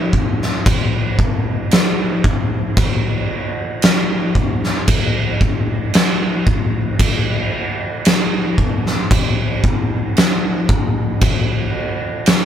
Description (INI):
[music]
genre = metal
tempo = 57 BPM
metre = 4/4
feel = straight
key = none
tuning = none
[part]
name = oversized low-tuned drum kit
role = drums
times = 0.1-12.4 s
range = crash cymbal, kick drum, snare drum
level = -15 LUFS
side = equal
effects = none
[sound]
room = little or no reverb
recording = band playing live in one room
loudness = -15 LUFS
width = side -9 dB against mid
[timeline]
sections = 0.0-12.4 A section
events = none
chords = none